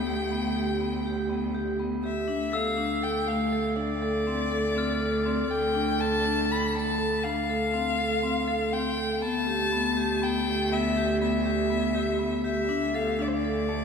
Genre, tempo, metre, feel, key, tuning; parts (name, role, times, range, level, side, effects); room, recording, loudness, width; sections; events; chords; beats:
contemporary instrumental, chamber music in an uneven meter; 121 BPM; 7/4; straight; D dorian; A4 = 437 Hz
rich violin; melody; 0.0-13.8 s; C5 to B5; -30 LUFS; left 4 dB
vibraphone with medium hard mallets; arpeggios; 0.0-13.8 s; A3 to A4; -28 LUFS; left 2 dB
clear cello; bass; 0.0-13.8 s; D2; -30 LUFS; right 4 dB
glockenspiel with hard plastic mallets; texture; 2.5-5.3 s; E6 to F6; -37 LUFS; right 1 dB
wet cathedral reverb, RT60 4.3 s; recorded in a church or concert hall; -24 LUFS; side -6 dB against mid
0.0-13.8 A section
0.0 Em/D (rootless); 2.3 Dm7; 9.2 Em/D; 12.7 D5
0.31 0.81 1.30 1.80 | 2.29 2.79 3.28 3.78 4.28 4.77 5.27 | 5.76 6.26 6.75 7.25 7.74 8.24 8.73 | 9.23 9.73 10.22 10.72 11.21 11.71 12.21 | 12.70 13.20 13.69